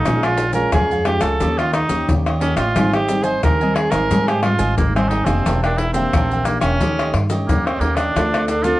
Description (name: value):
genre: samba and choro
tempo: 89 BPM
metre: 4/4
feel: straight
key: unclear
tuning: A4 = 444 Hz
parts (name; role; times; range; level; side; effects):
- warm cor anglais; melody; 0.0-8.8 s; Bb3 to C5; -20 LUFS; right 2 dB; none
- cavaquinho; accompaniment; 0.0-8.8 s; D4 to Ab5; -26 LUFS; right 3 dB; none
- nylon-string guitar; accompaniment; 0.0-8.8 s; F2 to G4; -24 LUFS; left 2 dB; none
- upright bass; bass; 0.1-8.7 s; E1 to Ab2; -22 LUFS; right 1 dB; none
- maracas, surdo, pandeiro and tamborim; percussion; 0.1-8.8 s; none; -21 LUFS; left 2 dB; none
- baroque flute; second line; 8.2-8.8 s; A4; -23 LUFS; left 1 dB; none
room: moderate studio reverb, RT60 0.8 s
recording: worn, warbling old tape, cassette tape, warbly pitch drift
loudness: -15 LUFS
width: side -17 dB against mid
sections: 0.0-8.8 A section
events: none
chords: 0.1 Bbm7; 1.4 Eb7; 2.8 Abmaj7; 5.5 Em7b5; 6.8 Eb7#11; 8.2 Dm7